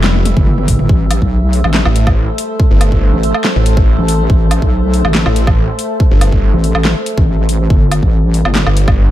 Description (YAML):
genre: heavy wobble dubstep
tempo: 141 BPM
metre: 4/4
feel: half-time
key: A minor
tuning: A4 = 440 Hz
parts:
  - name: evolving wavetable pad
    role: sustained chords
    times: 0.0-9.1 s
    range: G3 to E5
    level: -20 LUFS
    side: equal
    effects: chorus, built-in reverb, sidechain pumping
  - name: snarling distorted saw bass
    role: bass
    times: 0.0-9.1 s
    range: F1 to A1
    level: -12 LUFS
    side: equal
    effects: distortion, overdrive
  - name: dubstep drum kit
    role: drums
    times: 0.0-9.0 s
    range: handclaps, hi-hat, snare drum, toms, woodblock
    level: -17 LUFS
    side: equal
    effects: none
  - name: wobble bass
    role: bass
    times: 0.4-8.6 s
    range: G1 to B1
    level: -13 LUFS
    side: equal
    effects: chorus, overdrive
  - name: electronic kick drum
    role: drums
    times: 0.4-9.0 s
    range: none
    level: -12 LUFS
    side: equal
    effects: none
room: little or no reverb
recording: dark, warm production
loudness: -10 LUFS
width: side -13 dB against mid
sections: 0.0-9.1 A section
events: drum fill 0.0-0.9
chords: 0.0 G; 0.9 Am; 7.7 G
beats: 0.04 0.47 | 0.89 1.32 1.74 2.17 | 2.60 3.02 3.45 3.87 | 4.30 4.72 5.15 5.57 | 6.00 6.42 6.85 7.28 | 7.70 8.13 8.55 8.98